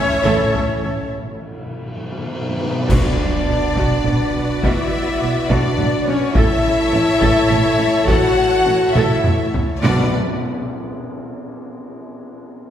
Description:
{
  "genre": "cinematic, epic orchestral film score",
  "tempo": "69 BPM (dotted quarters)",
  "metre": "6/8",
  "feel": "straight",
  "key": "B minor",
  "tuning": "A4 = 442 Hz",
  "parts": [
    { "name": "warm symphonic violin section", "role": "melody", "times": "0.0-10.2 s", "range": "B4 to F#5", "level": "-27 LUFS", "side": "left 3 dB", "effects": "none" },
    { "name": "rich studio violin section", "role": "second line", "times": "0.0-10.2 s", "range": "B4 to F#5", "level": "-25 LUFS", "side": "left 2 dB", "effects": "none" },
    { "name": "silver concert flute", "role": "second line", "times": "0.0-1.1 s", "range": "C#5", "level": "-24 LUFS", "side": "equal", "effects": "none" },
    { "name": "rich symphonic viola section", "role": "accompaniment", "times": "0.0-10.2 s", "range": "B3 to E5", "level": "-26 LUFS", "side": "right 1 dB", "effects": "none" },
    { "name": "mellow French horn section", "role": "sustained chords", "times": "0.0-10.1 s", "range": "B3 to F#4", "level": "-20 LUFS", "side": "left 1 dB", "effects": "none" },
    { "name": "rich symphonic string section", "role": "sustained chords", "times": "0.0-10.2 s", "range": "D4 to A5", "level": "-26 LUFS", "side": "left 1 dB", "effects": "none" },
    { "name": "clear symphonic double bass section", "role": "bass", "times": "0.0-10.2 s", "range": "A1 to B1", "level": "-24 LUFS", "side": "right 2 dB", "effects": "none" },
    { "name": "rich symphonic cello section", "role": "bass", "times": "0.0-10.2 s", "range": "A2 to B2", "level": "-25 LUFS", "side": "right 2 dB", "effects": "none" },
    { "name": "taiko ensemble", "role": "drums", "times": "0.2-9.8 s", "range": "none", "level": "-22 LUFS", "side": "equal", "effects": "none" },
    { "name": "timpani", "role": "percussion", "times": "1.1-3.7, 9.8-10.1 s", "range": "B2", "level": "-26 LUFS", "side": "equal", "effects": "none" },
    { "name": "clash cymbals, concert bass drum and tam-tam", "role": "percussion", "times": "2.9-4.0, 9.8-12.1 s", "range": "none", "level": "-28 LUFS", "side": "equal", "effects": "none" }
  ],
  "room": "wet concert hall reverb, RT60 2.1 s",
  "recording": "heard from further back in the room",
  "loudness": "-15 LUFS",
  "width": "side -10 dB against mid",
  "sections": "0.0-2.9 A section; 2.9-9.8 B section; 9.8-11.6 C section",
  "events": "break 1.1-2.9; timpani fill 1.1-2.9; drum fill 2.0-2.9, 8.9-9.8; band accent 2.9-3.5, 9.8-10.4",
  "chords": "0.0 A; 1.1 N.C.; 2.9 Bm; 6.4 A; 9.8 Bm"
}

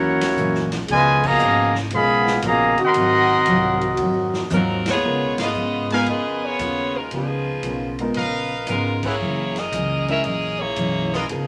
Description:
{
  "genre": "jazz, big band swing",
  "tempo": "115 BPM",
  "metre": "4/4",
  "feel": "swing 69% on 8ths",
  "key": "Db mixolydian from 5.0 s",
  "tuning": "A4 = 440 Hz",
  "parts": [
    { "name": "warm trumpet section", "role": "melody", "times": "0.0-4.5 s", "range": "Fb4 to C6", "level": "-20 LUFS", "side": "equal", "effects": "none" },
    { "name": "mellow trombone section", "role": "second line", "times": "0.0-4.5 s", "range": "Cb3 to Gb4", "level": "-25 LUFS", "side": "equal", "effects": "none" },
    { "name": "fingerpicked steel-string acoustic guitar", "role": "accompaniment", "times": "0.0-11.5 s", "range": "Gb2 to Bb4", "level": "-29 LUFS", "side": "equal", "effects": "none" },
    { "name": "upright bass", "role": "bass", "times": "0.0-11.5 s", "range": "Gb1 to Ab2", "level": "-32 LUFS", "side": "equal", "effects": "none" },
    { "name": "swinging big-band drum kit", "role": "drums", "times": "0.2-11.5 s", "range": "crash cymbal, hi-hat, kick drum, ride cymbal, snare drum, toms", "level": "-35 LUFS", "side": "equal", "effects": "none" },
    { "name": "warm saxophone section", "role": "melody", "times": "4.5-11.5 s", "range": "F3 to F5", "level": "-26 LUFS", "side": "equal", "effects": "none" },
    { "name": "warm grand piano", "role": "accompaniment", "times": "5.0-10.2 s", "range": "Ab3 to Bb4", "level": "-28 LUFS", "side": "equal", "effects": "none" },
    { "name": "bright trumpet section", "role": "stabs", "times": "5.4-11.2 s", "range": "Fb4 to Ab5", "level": "-29 LUFS", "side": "equal", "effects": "none" }
  ],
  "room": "wet studio reverb, RT60 0.5 s",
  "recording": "none",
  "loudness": "-20 LUFS",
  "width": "mono",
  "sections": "0.0-5.0 A section; 5.0-11.5 B section",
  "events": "band accent 1.1, 4.8, 5.3, 8.9; drum fill 4.5-5.0",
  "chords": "0.0 Gb13; 0.9 Db13; 3.0 Ab13; 5.0 Db13; 9.2 Gb13"
}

